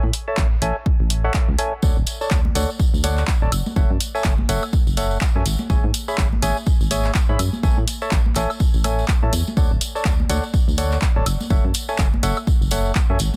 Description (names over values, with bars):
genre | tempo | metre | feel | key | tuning
piano house | 124 BPM | 4/4 | swing 59% on 16ths | unclear | A4 = 443 Hz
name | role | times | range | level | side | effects
percussive organ stab | riff | 0.0-13.2 s | G#4 to B5 | -28 LUFS | equal | subtle chorus, sidechain pumping, digital delay
solid FM bass | bass | 0.0-13.3 s | D1 to A2 | -25 LUFS | equal | sidechain pumping
punchy analog drum machine | drums | 0.1-13.3 s | handclaps, hi-hat, woodblock | -28 LUFS | equal | none
electronic kick drum | drums | 0.4-13.1 s | none | -22 LUFS | equal | none
tambourine and congas | percussion | 1.8-13.4 s | none | -33 LUFS | equal | none
room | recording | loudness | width
little or no reverb | dense, heavily limited modern master | -20 LUFS | mono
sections
0.0-13.4 A section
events
none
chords
0.0 Amaj7; 1.8 Dmaj7; 3.5 F#m7; 5.5 C#m/G#; 7.6 Amaj7; 9.6 Dmaj7; 11.3 F#m7